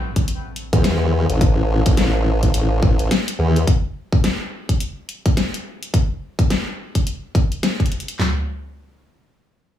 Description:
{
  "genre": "glitch hop",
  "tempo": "106 BPM",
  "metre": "4/4",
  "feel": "swing 59% on 16ths",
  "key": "unclear",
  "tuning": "A4 = 436 Hz",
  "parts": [
    { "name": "impact", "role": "sound effects", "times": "0.0-1.4 s", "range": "none", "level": "-32 LUFS", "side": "equal", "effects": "none" },
    { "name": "dubstep drum kit", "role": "drums", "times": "0.2-8.4 s", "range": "handclaps, kick drum, snare drum, toms", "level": "-18 LUFS", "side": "equal", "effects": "none" },
    { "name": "dubstep drum kit", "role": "drums", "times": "0.2-8.2 s", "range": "hi-hat, snare drum", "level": "-24 LUFS", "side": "left 2 dB", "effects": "none" },
    { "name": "formant-sweep wobble bass", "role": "bass", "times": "0.7-3.7 s", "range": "A1 to E2", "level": "-17 LUFS", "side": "equal", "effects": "chorus, tube saturation" }
  ],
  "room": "digital ambience",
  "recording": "studio ambience",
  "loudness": "-17 LUFS",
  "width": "side -11 dB against mid",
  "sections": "0.0-8.2 A section; 8.2-9.8 B section",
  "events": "impact 0.0-1.4",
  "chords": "none"
}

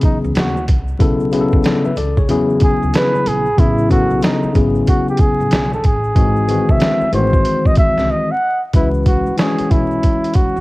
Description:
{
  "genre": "hip hop, jazz-hop",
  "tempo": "93 BPM",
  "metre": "4/4",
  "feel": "swing 64% on 16ths",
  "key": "C# minor",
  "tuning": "A4 = 441 Hz",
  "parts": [
    { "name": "breathy flugelhorn", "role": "melody", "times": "0.0-10.6 s", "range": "D#4 to F#5", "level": "-18 LUFS", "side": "right 1 dB", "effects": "cassette tape" },
    { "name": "tine electric piano", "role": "accompaniment", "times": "0.0-10.6 s", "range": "C#3 to E5", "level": "-17 LUFS", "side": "left 2 dB", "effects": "medium stereo tremolo, cassette tape" },
    { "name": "boom bap sampler-style drum kit", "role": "drums", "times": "0.0-10.5 s", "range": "hi-hat, kick drum, snare drum", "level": "-16 LUFS", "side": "equal", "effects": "cassette tape" },
    { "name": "maracas and congas", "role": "percussion", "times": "0.0-10.6 s", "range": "none", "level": "-34 LUFS", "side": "right 4 dB", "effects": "none" },
    { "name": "upright bass", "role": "bass", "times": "0.2-10.6 s", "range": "G#1 to E2", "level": "-22 LUFS", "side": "equal", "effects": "none" }
  ],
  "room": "light reverb, small room ambience",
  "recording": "home recording on cassette, vinyl crackle",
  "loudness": "-13 LUFS",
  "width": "side -20 dB against mid",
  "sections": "0.0-8.7 A section; 8.7-10.6 B section",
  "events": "flugelhorn solo 0.0-8.7; break 8.1-8.7",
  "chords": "0.0 C#m11; 1.0 Bm9; 2.3 E69; 3.6 A69; 6.2 G#7b13; 8.7 C#m11"
}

